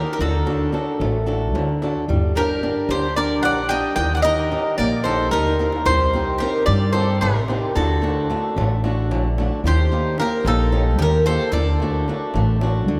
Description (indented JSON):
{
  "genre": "greek folk, Greek bouzouki band",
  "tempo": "222 BPM (eighths)",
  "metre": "7/8",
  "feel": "straight",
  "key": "D phrygian dominant",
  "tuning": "A4 = 440 Hz",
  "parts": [
    { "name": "Greek bouzouki", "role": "melody", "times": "0.0-13.0 s", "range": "A4 to G5", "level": "-25 LUFS", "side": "equal", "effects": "none" },
    { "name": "bowl-back mandolin", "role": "second line", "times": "0.0-13.0 s", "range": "Eb4 to Eb5", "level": "-32 LUFS", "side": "equal", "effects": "none" },
    { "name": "fingerpicked swing-style acoustic guitar", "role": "accompaniment", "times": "0.0-13.0 s", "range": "C3 to Bb4", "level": "-27 LUFS", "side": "equal", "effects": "none" },
    { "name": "upright bass", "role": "bass", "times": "0.0-13.0 s", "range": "G1 to G2", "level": "-25 LUFS", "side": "equal", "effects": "none" },
    { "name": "darbuka", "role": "percussion", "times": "0.2-13.0 s", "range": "none", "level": "-28 LUFS", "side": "equal", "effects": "none" }
  ],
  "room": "wet cathedral reverb, RT60 5.6 s",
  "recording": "in a vast, echoing space",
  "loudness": "-20 LUFS",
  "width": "mono",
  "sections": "0.0-13.0 A section",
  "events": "drum fill 5.3-5.9",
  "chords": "0.2 D; 2.1 Gm; 4.0 Eb; 5.9 Cm; 7.8 D; 9.6 Eb; 11.5 D",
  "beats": "| 0.19 0.46 0.73 1.00 1.27 1.54 1.81 | 2.08 2.35 2.62 2.89 3.16 3.43 3.70 | 3.97 4.24 4.51 4.78 5.05 5.32 5.59 | 5.86 6.13 6.40 6.67 6.94 7.21 7.48 | 7.75 8.02 8.29 8.56 8.83 9.10 9.37 | 9.64 9.91 10.18 10.45 10.72 10.99 11.26 | 11.53 11.80 12.07 12.34 12.61 12.88"
}